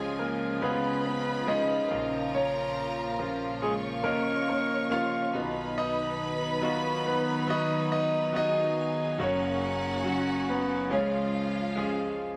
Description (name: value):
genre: pop ballad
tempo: 70 BPM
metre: 4/4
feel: straight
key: Db mixolydian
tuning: A4 = 440 Hz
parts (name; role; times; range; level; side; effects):
- warm concert grand piano; melody; 0.0-12.2 s; Ab3 to F5; -33 LUFS; equal; none
- warm studio violin section; second line; 0.0-12.4 s; F4 to Db6; -38 LUFS; equal; none
- clear concert grand piano; accompaniment; 0.0-12.4 s; Gb1 to Ab4; -36 LUFS; equal; none
- warm studio string section; sustained chords; 0.0-12.4 s; Db3 to F4; -36 LUFS; equal; none
- direct-recorded clean electric guitar; arpeggios; 0.0-12.4 s; Gb2 to Bb4; -40 LUFS; equal; tremolo
room: wet stone room reverb, RT60 0.9 s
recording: band playing live in one room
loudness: -29 LUFS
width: mono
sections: 0.0-12.4 A section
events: none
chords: 0.0 Db; 1.9 Bbm; 5.3 Cb; 9.2 Gb; 10.9 Db